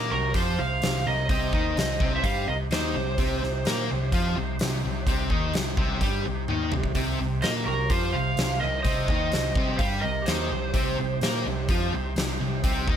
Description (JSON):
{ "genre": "blues rock power trio and southern rock", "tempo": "127 BPM", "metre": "4/4", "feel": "straight", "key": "C minor", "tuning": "A4 = 440 Hz", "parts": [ { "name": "tonewheel organ", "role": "sustained chords", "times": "0.0-13.0 s", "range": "C4 to C5", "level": "-39 LUFS", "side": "right 5 dB", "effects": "slow rotary speaker, overdrive" }, { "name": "fuzz guitar", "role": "riff", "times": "0.0-13.0 s", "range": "C3 to Bb4", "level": "-29 LUFS", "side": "equal", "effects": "distortion" }, { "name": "picked electric bass", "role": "bass", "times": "0.0-13.0 s", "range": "C2 to Bb2", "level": "-30 LUFS", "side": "equal", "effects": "none" }, { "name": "overdriven slide guitar", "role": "melody", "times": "0.1-4.6, 7.4-12.1 s", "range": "Bb4 to F5", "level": "-30 LUFS", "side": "right 2 dB", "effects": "none" }, { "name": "lightly driven lead guitar", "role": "second line", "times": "0.1-4.6, 7.4-12.1 s", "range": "F#4 to C5", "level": "-37 LUFS", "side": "right 8 dB", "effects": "none" }, { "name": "huge arena drum kit", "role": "drums", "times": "0.3-13.0 s", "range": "hi-hat, kick drum, snare drum, toms", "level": "-28 LUFS", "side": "equal", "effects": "none" } ], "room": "light reverb", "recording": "none", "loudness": "-23 LUFS", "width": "side -9 dB against mid", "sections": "0.0-13.0 A section", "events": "drum fill 6.5-7.0", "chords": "0.0 Cm" }